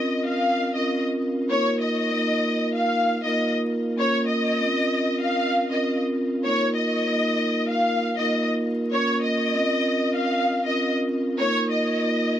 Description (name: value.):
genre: hip hop.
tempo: 97 BPM.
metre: 4/4.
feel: swing 60% on 16ths.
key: Bb minor.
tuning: A4 = 440 Hz.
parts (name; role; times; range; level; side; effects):
warm studio violin section; melody; 0.0-12.4 s; Db5 to F5; -24 LUFS; left 1 dB; high-pass filter, low-pass filter, ping-pong delay.
vibraphone with soft mallets; accompaniment; 0.0-12.4 s; Bb3 to Bb4; -24 LUFS; right 1 dB; cassette tape, high-pass filter, low-pass filter.
room: wet studio reverb, RT60 0.5 s.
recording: vinyl crackle.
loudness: -21 LUFS.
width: side -10 dB against mid.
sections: 0.0-12.4 A section.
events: none.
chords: 0.0 Bbmadd9; 1.5 Ebsus2; 4.0 Bbmadd9; 6.5 Ebsus2; 8.9 Bbmadd9; 11.4 Ebsus2.